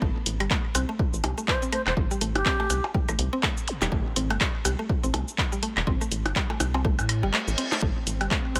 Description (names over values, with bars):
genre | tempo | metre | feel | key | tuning
minimal techno | 123 BPM | 4/4 | swing 58% on 16ths | A minor | A4 = 440 Hz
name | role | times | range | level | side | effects
mallet-like synth pluck | riff | 0.0-8.6 s | G3 to C4 | -35 LUFS | equal | chorus, sidechain pumping, dub echo
rubbery square bass | bass | 0.0-8.6 s | E1 to A2 | -31 LUFS | equal | sidechain pumping
electronic kick drum | drums | 0.0-8.4 s | none | -30 LUFS | equal | none
punchy analog drum machine | drums | 0.3-8.6 s | cabasa, handclaps, hi-hat | -31 LUFS | equal | none
percussion blips | percussion | 0.4-8.6 s | none | -32 LUFS | equal | digital delay
wooden flute | melody | 1.5-2.8 s | G4 to C5 | -32 LUFS | equal | digital delay
zap and reverse cymbal | sound effects | 3.7-3.8, 7.1-7.8 s | none | -39 LUFS | equal | none
swarming drone | texture | 8.0-8.6 s | C4 | -41 LUFS | equal | built-in reverb, sidechain pumping
room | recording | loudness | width
light reverb | none | -26 LUFS | mono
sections
0.0-8.6 A section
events
reverse cymbal 7.1-7.8; kick drops out 7.3-7.8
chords
0.0 Am7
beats
| 0.02 0.51 0.99 1.48 | 1.97 2.46 2.94 3.43 | 3.92 4.41 4.90 5.38 | 5.87 6.36 6.85 7.33 | 7.82 8.31